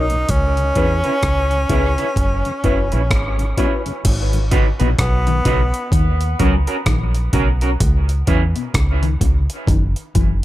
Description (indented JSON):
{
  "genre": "dub reggae",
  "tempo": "64 BPM",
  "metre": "4/4",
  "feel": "swing 60% on 16ths",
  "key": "G# minor",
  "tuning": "A4 = 441 Hz",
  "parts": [
    { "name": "bright tenor saxophone", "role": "melody", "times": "0.0-5.9 s", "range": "B3 to D#4", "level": "-23 LUFS", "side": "equal", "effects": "dub echo" },
    { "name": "barky reed electric piano", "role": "stabs", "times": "0.0-3.8 s", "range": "E4 to C#5", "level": "-28 LUFS", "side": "left 4 dB", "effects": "overdrive, dub echo" },
    { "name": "deep dub fingered electric bass", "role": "bass", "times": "0.0-10.4 s", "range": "F#1 to E2", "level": "-18 LUFS", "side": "equal", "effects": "none" },
    { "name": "tonewheel organ", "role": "accompaniment", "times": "0.1-4.4 s", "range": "D#2 to E4", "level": "-30 LUFS", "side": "left 3 dB", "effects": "none" },
    { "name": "breakbeat sampler-style drum kit", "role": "drums", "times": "0.1-10.4 s", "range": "crash cymbal, hi-hat, kick drum, rim click", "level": "-19 LUFS", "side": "equal", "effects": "none" },
    { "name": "electric guitar through a small old amp", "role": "accompaniment", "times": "0.8-8.4 s", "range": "C#4 to B4", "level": "-25 LUFS", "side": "right 3 dB", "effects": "tremolo, dub echo" },
    { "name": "mellow electric guitar", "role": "arpeggios", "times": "4.5-10.3 s", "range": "B2 to F#3", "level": "-26 LUFS", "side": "left 6 dB", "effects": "ensemble chorus, dub echo" }
  ],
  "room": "light reverb",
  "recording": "none",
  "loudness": "-15 LUFS",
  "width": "side -15 dB against mid",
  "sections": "0.0-4.0 A section; 4.0-10.4 B section",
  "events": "none",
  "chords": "0.3 C#m7; 2.2 F#7sus4; 4.0 G#m7; 5.9 D#m7; 7.8 C#m7; 9.7 F#7(no3)",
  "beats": "| 0.29 1.23 2.17 3.11 | 4.05 4.99 5.93 6.87 | 7.80 8.74 9.68"
}